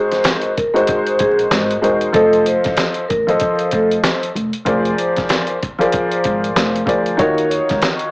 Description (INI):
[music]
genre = hip hop, boom-bap hip-hop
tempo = 95 BPM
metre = 4/4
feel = swing 59% on 16ths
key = unclear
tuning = A4 = 440 Hz
[part]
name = vibraphone with medium hard mallets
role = melody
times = 0.0-7.8 s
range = Ab4 to Db5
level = -18 LUFS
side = equal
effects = high-pass filter, low-pass filter, cassette tape, analog delay
[part]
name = warm upright piano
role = accompaniment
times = 0.0-8.1 s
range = Eb3 to Eb5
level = -16 LUFS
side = left 1 dB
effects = high-pass filter, low-pass filter, cassette tape
[part]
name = dusty soul sampler-style drum kit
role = drums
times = 0.1-8.1 s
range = hi-hat, kick drum, snare drum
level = -20 LUFS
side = equal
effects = cassette tape
[part]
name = upright bass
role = bass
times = 1.2-7.8 s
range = Fb1 to Eb2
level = -23 LUFS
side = equal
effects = transformer saturation
[sound]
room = moderate spring reverb, RT60 1.2 s, small room ambience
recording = home recording on cassette, vinyl crackle, small speaker sound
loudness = -14 LUFS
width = side -27 dB against mid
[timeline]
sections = 0.0-8.1 A section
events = none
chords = 0.0 Ab7; 2.1 F7; 4.7 Bb9/F; 7.2 Ebm7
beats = 0.24 0.88 1.51 | 2.14 2.77 3.40 4.03 | 4.67 5.30 5.93 6.56 | 7.19 7.82